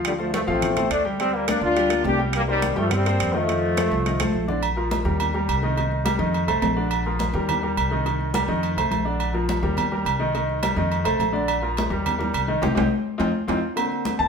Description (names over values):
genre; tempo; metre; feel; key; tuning
latin, salsa; 210 BPM; 4/4; straight; Bb major; A4 = 440 Hz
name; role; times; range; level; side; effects
clear baby grand piano; accompaniment; 0.0-14.3 s; D3 to A5; -26 LUFS; left 2 dB; none
upright bass; bass; 0.0-14.3 s; A1 to G2; -27 LUFS; equal; none
timbales and agogo bells; percussion; 0.0-14.2 s; none; -27 LUFS; right 7 dB; none
brilliant trombone section; melody; 0.1-4.5 s; D3 to G4; -23 LUFS; left 2 dB; none
congas; percussion; 0.1-14.3 s; none; -30 LUFS; left 3 dB; none
room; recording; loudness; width
wet large studio reverb, RT60 0.9 s; band playing live in one room; -20 LUFS; side -6 dB against mid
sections
0.0-4.6 A section; 4.6-13.8 B section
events
drum fill 4.2-4.6, 13.3-13.8; band accent 12.6-13.8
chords
0.0 Dm7; 1.2 Gm7/D; 2.3 Cm7; 3.5 F7; 4.6 Bb5; 5.2 Eb; 5.8 Cm7; 6.3 F7; 6.9 Bb; 7.5 Eb; 8.1 Cm7; 8.6 F7; 9.2 Bb; 9.8 Eb; 10.3 Cm7; 10.9 F7; 11.5 Bb; 12.1 Eb; 12.6 Cm; 13.2 F5; 13.8 Bbadd9